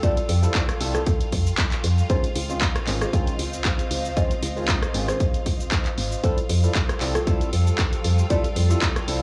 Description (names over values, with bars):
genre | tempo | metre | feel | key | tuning
deep house | 116 BPM | 4/4 | swing 54% on 16ths | F major | A4 = 440 Hz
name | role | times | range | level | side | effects
buzzing marimba with soft mallets | melody | 0.0-8.7 s | F4 to Eb5 | -34 LUFS | equal | cassette tape, tape echo
soft string machine | sustained chords | 0.0-9.2 s | G3 to Eb5 | -39 LUFS | equal | none
barky tine electric piano | stabs | 0.0-9.2 s | Eb3 to A4 | -33 LUFS | equal | phaser, sidechain pumping, analog delay
electronic kick drum | drums | 0.0-8.9 s | none | -26 LUFS | equal | overdrive, cassette tape
punchy analog drum machine | drums | 0.0-9.2 s | handclaps, hi-hat, rim click, shaker | -30 LUFS | equal | cassette tape
bright symphonic violin section | texture | 0.0-9.2 s | F4 to F5 | -42 LUFS | equal | sidechain pumping
warbly tape-like pad | texture | 0.0-9.2 s | F3 to E6 | -39 LUFS | equal | chorus, built-in reverb, sidechain pumping
woody FM bass | bass | 0.3-9.2 s | Ab1 to F2 | -25 LUFS | equal | sidechain pumping
room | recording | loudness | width
digital ambience | home recording on cassette, studio ambience | -23 LUFS | mono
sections
0.0-9.2 A section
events
none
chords
0.0 Fmaj9; 2.1 Dbmaj9; 6.2 Fmaj9